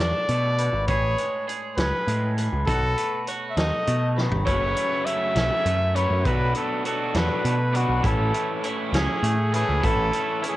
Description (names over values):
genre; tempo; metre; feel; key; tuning
math rock and midwest emo; 67 BPM (dotted quarters); 6/8; straight; A major; A4 = 440 Hz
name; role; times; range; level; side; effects
clear trumpet; melody; 0.0-10.6 s; F#4 to E5; -26 LUFS; equal; none
twangy electric guitar; accompaniment; 0.0-10.6 s; F#2 to G#4; -33 LUFS; right 5 dB; spring reverb
electric guitar through a small old amp; arpeggios; 0.0-10.6 s; G#4 to C#5; -33 LUFS; left 6 dB; phaser, analog delay
growling picked electric bass; bass; 0.0-10.1 s; F#1 to B2; -24 LUFS; equal; overdrive
loose indie drum kit; drums; 0.3-10.6 s; hi-hat, kick drum, snare drum, toms; -29 LUFS; equal; cassette tape
raw garage guitar; riff; 4.5-10.6 s; B2 to E4; -30 LUFS; right 1 dB; overdrive
room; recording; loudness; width
small room ambience; home recording on cassette; -21 LUFS; side -16 dB against mid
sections
0.0-10.6 A section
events
drum fill 4.2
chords
0.0 Bm7; 0.9 Amaj7; 2.7 B7; 4.5 F#m7; 6.3 Bm7; 8.0 Amaj7; 9.8 A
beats
| 0.89 1.78 | 2.68 3.58 | 4.47 5.37 | 6.26 7.15 | 8.05 8.94 | 9.84